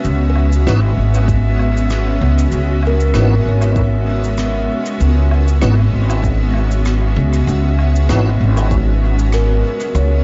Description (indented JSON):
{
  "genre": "ambient dub",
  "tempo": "97 BPM",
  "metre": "4/4",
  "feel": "swing 55% on 16ths",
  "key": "C# dorian",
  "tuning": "A4 = 445 Hz",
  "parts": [
    { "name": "granular cloud pad", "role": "sustained chords", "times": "0.0-10.2 s", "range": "G#3 to E5", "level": "-24 LUFS", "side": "equal", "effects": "built-in reverb" },
    { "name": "upright bass", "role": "bass", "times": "0.0-10.2 s", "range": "G#1 to C#2", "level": "-16 LUFS", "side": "equal", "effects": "none" },
    { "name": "cabasa, woodblock and rim click", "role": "drums", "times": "0.0-10.1 s", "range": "none", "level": "-34 LUFS", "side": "equal", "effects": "dub echo" },
    { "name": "drifting glass-harmonics texture", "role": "texture", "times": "0.0-10.2 s", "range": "E5", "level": "-32 LUFS", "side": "equal", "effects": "chorus, built-in reverb" },
    { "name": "kalimba", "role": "arpeggios", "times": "0.3-10.2 s", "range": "A#4 to C#5", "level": "-29 LUFS", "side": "equal", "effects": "tape echo" },
    { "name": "tonewheel organ", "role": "stabs", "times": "0.7-8.3 s", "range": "E3 to F#4", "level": "-28 LUFS", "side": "equal", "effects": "overdrive, chorus vibrato, slow rotary speaker, dub echo" },
    { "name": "electronic kick drum", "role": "drums", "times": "1.3-8.8 s", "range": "none", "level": "-22 LUFS", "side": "equal", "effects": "none" }
  ],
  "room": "small room ambience",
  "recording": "nothing above 7.6 kHz",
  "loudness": "-15 LUFS",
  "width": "mono",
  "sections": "0.0-10.2 A section",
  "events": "none",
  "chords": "0.0 C#m11",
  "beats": "| 0.05 0.67 1.29 1.90 | 2.52 3.14 3.76 4.38 | 5.00 5.62 6.23 6.85 | 7.47 8.09 8.71 9.33 | 9.95"
}